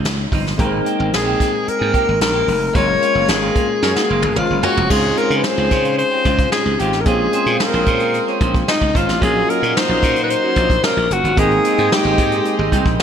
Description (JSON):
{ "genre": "polished 1980s jazz-funk pop", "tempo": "111 BPM", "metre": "4/4", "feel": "straight", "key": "Ab major", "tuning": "A4 = 440 Hz", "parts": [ { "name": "barky tine electric piano", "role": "accompaniment", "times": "0.0-13.0 s", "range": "Gb3 to G5", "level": "-23 LUFS", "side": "left 2 dB", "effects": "overdrive, lush chorus, slapback echo" }, { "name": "clean electric guitar", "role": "riff", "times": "0.0-13.0 s", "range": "F3 to Db5", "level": "-24 LUFS", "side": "right 4 dB", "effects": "lush chorus" }, { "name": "glassy slap bass", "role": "bass", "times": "0.0-13.0 s", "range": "F1 to Db3", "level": "-21 LUFS", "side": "right 1 dB", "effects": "none" }, { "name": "vintage brush drum kit", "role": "drums", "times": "0.0-13.0 s", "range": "crash cymbal, hi-hat, kick drum, snare drum, toms", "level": "-21 LUFS", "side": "right 1 dB", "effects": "none" }, { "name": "breathy alto saxophone", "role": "melody", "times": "1.1-13.0 s", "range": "Eb4 to Db5", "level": "-18 LUFS", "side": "left 2 dB", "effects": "slapback echo" }, { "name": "warm horn section", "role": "second line", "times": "3.8-13.0 s", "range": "Ab3 to Eb5", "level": "-24 LUFS", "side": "right 2 dB", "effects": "slapback echo, ping-pong delay" } ], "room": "moderate lush hall reverb, RT60 1.9 s", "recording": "big arena sound", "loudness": "-14 LUFS", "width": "side -8 dB against mid", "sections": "0.0-4.9 A section; 4.9-13.0 B section", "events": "band accent 2.8-4.9; drum fill 3.8-4.9", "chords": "0.0 Dbmaj9; 0.6 Abmaj9; 2.8 Gbmaj9#11; 4.9 Dbmaj7; 7.1 Bbm9; 9.2 Ebm9/Bb; 11.4 Abmaj7" }